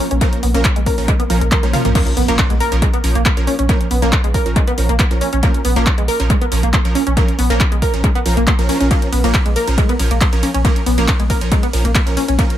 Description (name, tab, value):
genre	driving peak-time techno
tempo	138 BPM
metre	4/4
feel	straight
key	Bb phrygian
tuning	A4 = 440 Hz
part	tight sequenced synth	riff	0.0-12.5 s	Ab3 to Bb4	-20 LUFS	equal	chorus, overdrive, sidechain pumping, analog delay
part	supersaw stab	stabs	0.0-12.6 s	F3 to Bb4	-23 LUFS	right 2 dB	sidechain pumping, analog delay
part	deep dark ambient pad	drone	0.0-2.0 s	Bb2 to Bb3	-29 LUFS	left 1 dB	none
part	saturated sub bass	bass	0.1-12.4 s	Bb1	-18 LUFS	equal	overdrive, sidechain pumping, low-pass filter
part	punchy analog drum machine	drums	0.1-12.6 s	crash cymbal, handclaps, hi-hat, ride cymbal, toms	-22 LUFS	equal	overdrive, dub echo
part	electronic kick drum	drums	0.2-12.5 s	none	-16 LUFS	equal	overdrive
part	impact	sound effects	2.1-3.7 s	none	-28 LUFS	equal	none
room	digital ambience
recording	echo-heavy mix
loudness	-13 LUFS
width	side -12 dB against mid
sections	0.0-2.0 A section; 2.0-12.6 B section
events	drum fill 1.5-2.0; drop 2.0-12.6; impact 2.0-3.7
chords	0.0 Bbm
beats	| 0.21 0.65 1.08 1.52 | 1.95 2.39 2.82 3.26 | 3.69 4.13 4.56 5.00 | 5.43 5.87 6.30 6.74 | 7.17 7.60 8.04 8.47 | 8.91 9.34 9.78 10.21 | 10.65 11.08 11.52 11.95 | 12.39